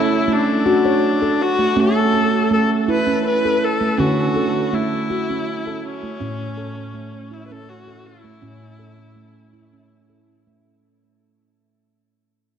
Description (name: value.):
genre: world meditative, meditative tuned percussion.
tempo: 81 BPM.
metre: 3/4.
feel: straight.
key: A major.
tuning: A4 = 440 Hz.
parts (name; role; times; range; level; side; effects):
clear viola; melody; 0.0-9.9 s; C#4 to B4; -20 LUFS; left 2 dB; shimmer reverb, tape echo.
handpan; arpeggios; 0.0-10.6 s; A2 to C#5; -19 LUFS; right 2 dB; shimmer reverb, tape echo.
room: wet cathedral reverb, RT60 4.2 s.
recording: none.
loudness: -16 LUFS.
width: side -8 dB against mid.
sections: 0.0-10.6 A section.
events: fade-out 0.0-10.6.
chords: 0.0 D5; 1.8 A; 4.0 D; 6.2 A.